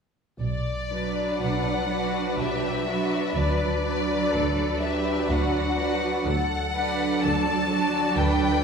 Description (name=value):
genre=classical, slow romantic movement for string orchestra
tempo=62 BPM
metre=3/4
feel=rubato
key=B minor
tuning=A4 = 441 Hz
part: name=rich studio violin section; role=melody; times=0.4-8.6 s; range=D5 to A5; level=-28 LUFS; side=left 3 dB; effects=none
part: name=rich chamber double bass section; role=bass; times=0.4-8.6 s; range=B1 to D2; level=-30 LUFS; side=equal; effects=none
part: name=clear chamber violin section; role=second line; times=0.9-8.6 s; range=A4 to D5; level=-31 LUFS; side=left 3 dB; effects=none
part: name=warm chamber viola section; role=accompaniment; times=0.9-8.6 s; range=F#3 to D4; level=-26 LUFS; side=right 3 dB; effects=none
part: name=rich studio cello section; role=bass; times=1.4-8.6 s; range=D4 to B4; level=-33 LUFS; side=equal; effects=none
room=wet recital hall reverb, RT60 1.6 s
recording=heard from further back in the room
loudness=-22 LUFS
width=side -6 dB against mid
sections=0.4-8.6 A section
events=none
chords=0.4 Bm; 3.4 Bm/D; 6.3 D